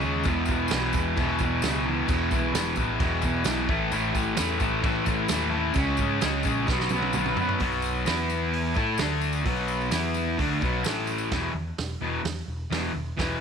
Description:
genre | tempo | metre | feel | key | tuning
garage rock duo or trio | 130 BPM | 4/4 | straight | E major | A4 = 440 Hz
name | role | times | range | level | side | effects
fuzz guitar | riff | 0.0-13.4 s | E2 to A4 | -25 LUFS | left 1 dB | distortion
overdriven picked electric bass | bass | 0.0-13.3 s | E1 to A2 | -31 LUFS | equal | none
tambourine | percussion | 0.0-11.3 s | none | -41 LUFS | left 13 dB | none
vintage drum kit | drums | 0.3-13.3 s | crash cymbal, hi-hat, kick drum, snare drum, toms | -30 LUFS | right 2 dB | none
room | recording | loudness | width
light reverb | 1960s-style stereo | -23 LUFS | side -7 dB against mid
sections
0.0-7.6 A section; 7.6-11.3 B section; 11.3-13.4 C section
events
drum fill 6.7-7.6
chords
0.2 E5; 3.7 A5; 5.8 C#5; 6.7 B5; 8.1 E5; 8.8 A5; 9.0 D5; 9.5 B5; 9.9 E5; 10.4 B5; 10.8 A5; 11.3 E5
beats
| 0.25 0.71 1.17 1.62 | 2.08 2.54 3.00 3.46 | 3.92 4.38 4.84 5.30 | 5.76 6.22 6.68 7.14 | 7.60 8.06 8.53 8.99 | 9.45 9.92 10.38 10.85 | 11.31 11.78 12.25 12.72 | 13.19

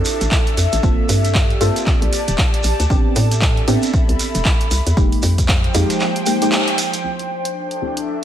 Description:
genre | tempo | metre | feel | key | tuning
deep house | 116 BPM | 4/4 | swing 60% on 16ths | D minor | A4 = 442 Hz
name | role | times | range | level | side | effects
deep mellow chord stab | stabs | 0.0-8.2 s | D2 to A4 | -23 LUFS | right 1 dB | chorus, sidechain pumping, dub echo
airy breathy pad | texture | 0.0-8.2 s | F3 to B5 | -23 LUFS | equal | chorus, sidechain pumping
dusty soul sampler-style drum kit | drums | 0.1-6.9 s | hi-hat, snare drum | -34 LUFS | right 1 dB | none
punchy analog drum machine | drums | 0.1-8.1 s | handclaps, hi-hat | -23 LUFS | right 1 dB | none
shekere | percussion | 0.1-7.0 s | none | -27 LUFS | right 3 dB | none
hollow knocking FM bass | bass | 0.2-5.8 s | D1 to A2 | -18 LUFS | equal | sidechain pumping
electronic kick drum | drums | 0.3-5.6 s | none | -18 LUFS | equal | none
room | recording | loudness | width
light reverb | none | -14 LUFS | side -10 dB against mid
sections
0.0-7.0 A section; 7.0-8.2 B section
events
band accent 6.5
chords
0.0 Dm11; 0.8 Gm11; 2.9 Am11; 5.0 Fm11; 7.0 Dm11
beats
0.32 | 0.83 1.35 1.87 2.38 | 2.90 3.42 3.94 4.45 | 4.97 5.49 6.00 6.52 | 7.04 7.56 8.07

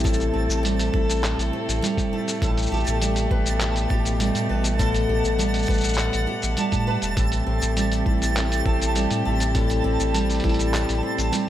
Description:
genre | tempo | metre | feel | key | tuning
folktronica | 101 BPM | 4/4 | straight | A dorian | A4 = 444 Hz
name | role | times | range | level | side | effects
dark string quartet | sustained chords | 0.0-11.5 s | B2 to F#5 | -29 LUFS | equal | none
picked steel-string acoustic guitar | arpeggios | 0.0-11.5 s | A2 to B4 | -26 LUFS | equal | tape echo
warm sub bass | bass | 0.0-11.3 s | E1 to A2 | -24 LUFS | equal | none
electronic kick drum | drums | 0.0-10.6 s | none | -25 LUFS | equal | studio reverb
twinkling granular texture | texture | 0.0-11.5 s | A5 | -31 LUFS | right 5 dB | built-in reverb
lo-fi sampler-style drum kit | drums | 0.1-11.5 s | handclaps, hi-hat, shaker | -29 LUFS | left 1 dB | studio reverb
room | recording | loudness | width
light reverb | none | -20 LUFS | side -12 dB against mid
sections
0.0-11.5 A section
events
none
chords
0.0 Am7; 2.4 Gadd9/A; 7.2 Am7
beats
| 0.05 0.64 1.24 1.83 | 2.42 3.02 3.61 4.21 | 4.80 5.39 5.99 6.58 | 7.18 7.77 8.37 8.96 | 9.55 10.15 10.74 11.34

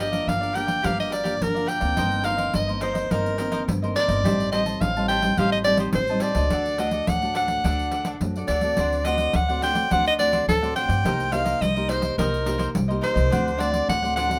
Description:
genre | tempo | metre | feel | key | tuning
samba and choro | 106 BPM | 4/4 | straight | unclear | A4 = 440 Hz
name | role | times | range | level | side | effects
bright soprano saxophone | melody | 0.0-14.4 s | A4 to G5 | -26 LUFS | equal | none
cavaquinho | accompaniment | 0.0-14.4 s | D4 to A5 | -33 LUFS | equal | none
nylon-string guitar | accompaniment | 0.0-14.4 s | G2 to G4 | -32 LUFS | equal | none
upright bass | bass | 0.0-14.4 s | G1 to G2 | -31 LUFS | equal | none
pandeiro | percussion | 0.1-14.4 s | none | -32 LUFS | equal | none
room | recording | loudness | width
moderate studio reverb, RT60 0.5 s | none | -23 LUFS | mono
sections
0.0-14.4 A section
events
none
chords
0.0 Gm7; 2.0 Cm7/G; 4.2 Am7b5; 6.5 D; 8.8 D7; 11.0 Cm7; 13.3 D7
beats
0.28 0.84 1.41 | 1.98 2.54 3.11 3.68 | 4.25 4.81 5.38 5.95 | 6.51 7.08 7.65 8.21 | 8.78 9.35 9.91 10.48 | 11.05 11.62 12.18 12.75 | 13.32 13.88

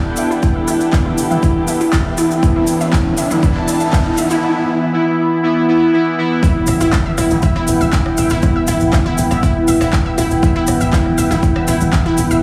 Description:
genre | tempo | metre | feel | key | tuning
melodic techno | 120 BPM | 4/4 | straight | E minor | A4 = 440 Hz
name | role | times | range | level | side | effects
sweeping resonant pad | sustained chords | 0.0-12.4 s | E4 to G5 | -25 LUFS | equal | chorus, sidechain pumping
analog synth brass | stabs | 0.0-12.4 s | E3 to E4 | -19 LUFS | equal | chorus, sidechain pumping, tape echo
riser and impact | sound effects | 2.1-8.4 s | none | -28 LUFS | equal | none
rich studio string section | texture | 0.0-4.4 s | D4 to A5 | -28 LUFS | equal | sidechain pumping
unison pluck | arpeggios | 0.2-12.4 s | E4 to E6 | -23 LUFS | equal | sidechain pumping, tape echo
techno drum kit | drums | 0.2-12.3 s | handclaps, hi-hat, rim click, toms | -27 LUFS | equal | overdrive, small room ambience
cabasa | percussion | 0.2-12.4 s | none | -30 LUFS | equal | none
electronic kick drum | drums | 0.4-12.0 s | none | -18 LUFS | equal | overdrive, small room ambience
tight sequencer bass | bass | 6.7-12.4 s | D1 to E1 | -22 LUFS | equal | sidechain pumping
room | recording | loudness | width
moderate lush hall reverb, RT60 2.3 s | heavily compressed radio sound, multiband compression, studio reverb | -15 LUFS | mono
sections
0.0-6.4 A section; 6.4-12.4 B section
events
build-up 0.0-6.4; filter sweep on synth pluck 0.0-6.4; riser 2.1-4.4; drop 6.4-12.4; impact 6.4-8.4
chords
0.0 Emadd9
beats
| 0.43 0.93 1.43 1.93 | 2.43 2.93 3.43 3.93 | 4.43 4.93 5.43 5.93 | 6.43 6.93 7.43 7.93 | 8.43 8.93 9.43 9.93 | 10.43 10.93 11.43 11.93

